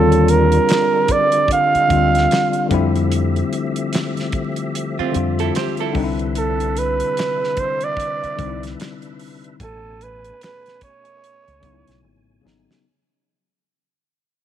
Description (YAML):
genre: R&B, neo-soul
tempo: 74 BPM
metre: 4/4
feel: swing 59% on 16ths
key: unclear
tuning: A4 = 442 Hz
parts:
  - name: trumpet with bucket mute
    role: melody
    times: 0.0-12.0 s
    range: A4 to F5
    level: -18 LUFS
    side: right 4 dB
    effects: none
  - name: tine electric piano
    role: accompaniment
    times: 0.0-12.9 s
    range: C#3 to C#5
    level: -22 LUFS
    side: left 7 dB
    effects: none
  - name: tonewheel organ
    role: sustained chords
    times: 0.0-12.8 s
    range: B2 to G#5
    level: -29 LUFS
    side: equal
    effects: slow rotary speaker, overdrive, chorus vibrato
  - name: deep dub fingered electric bass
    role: bass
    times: 0.0-12.7 s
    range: G#1 to F2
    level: -20 LUFS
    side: equal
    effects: none
  - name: damped 70s drum kit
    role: drums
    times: 0.1-12.8 s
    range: handclaps, hi-hat, kick drum, snare drum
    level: -25 LUFS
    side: right 1 dB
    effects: none
  - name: archtop guitar, miked and amplified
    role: second line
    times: 5.0-6.2 s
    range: C4 to C5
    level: -24 LUFS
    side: right 10 dB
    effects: none
room: light reverb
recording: 1960s-style stereo with parts hard left and right, vinyl crackle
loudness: -16 LUFS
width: side -10 dB against mid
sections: 0.0-12.8 A section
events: fade-out 0.0-12.8; drum fill 12.0-12.8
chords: 0.0 Ebmaj9; 2.7 Fmaj9; 6.0 Cmaj9; 9.6 Amaj9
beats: 0.68 1.49 2.30 | 3.11 3.92 4.74 5.55 | 6.36 7.17 7.98 8.79 | 9.60 10.41 11.22 12.03